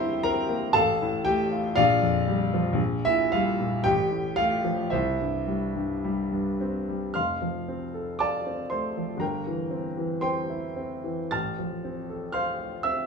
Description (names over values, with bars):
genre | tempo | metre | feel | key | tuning
classical, romantic character piece for solo piano | 53-61 BPM | 2/4 | rubato | F major | A4 = 440 Hz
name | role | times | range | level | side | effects
warm grand piano | solo | 0.0-13.1 s | F1 to A6 | -24 LUFS | equal | none
room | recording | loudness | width
moderate small room reverb, RT60 0.5 s | studio reverb | -24 LUFS | side -5 dB against mid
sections
0.0-7.2 A section; 7.2-13.1 B section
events
none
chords
0.0 C7/G; 0.7 F/A; 1.8 Bb6; 2.8 Gm7/Bb; 3.8 F/A; 4.9 C; 7.2 F; 9.2 C7/G; 11.3 F/A